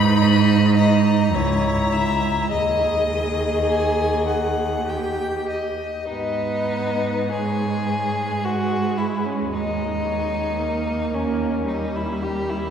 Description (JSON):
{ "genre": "classical, slow romantic movement for string quartet", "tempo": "47-56 BPM", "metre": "3/4", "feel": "rubato", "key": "G# minor", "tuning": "A4 = 440 Hz", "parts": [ { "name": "clear violin", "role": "melody", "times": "0.0-12.7 s", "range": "A#4 to B5", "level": "-27 LUFS", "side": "left 4 dB", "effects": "none" }, { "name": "rich violin", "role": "second line", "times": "0.0-12.7 s", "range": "C#4 to G#5", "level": "-25 LUFS", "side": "left 2 dB", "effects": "none" }, { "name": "rich viola", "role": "accompaniment", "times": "0.0-12.7 s", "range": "G3 to G#4", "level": "-26 LUFS", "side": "right 3 dB", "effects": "none" }, { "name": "rich cello", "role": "bass", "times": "0.0-12.7 s", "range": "C#2 to G#2", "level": "-22 LUFS", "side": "right 3 dB", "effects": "none" } ], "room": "wet church reverb, RT60 3.4 s", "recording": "heard from further back in the room", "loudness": "-19 LUFS", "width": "side -8 dB against mid", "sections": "0.0-6.1 A section; 6.1-12.7 B section", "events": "none", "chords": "0.0 G#m; 1.3 A#dim/C#; 2.5 G#5/D#; 4.9 D#; 6.1 G#m; 9.5 D#7" }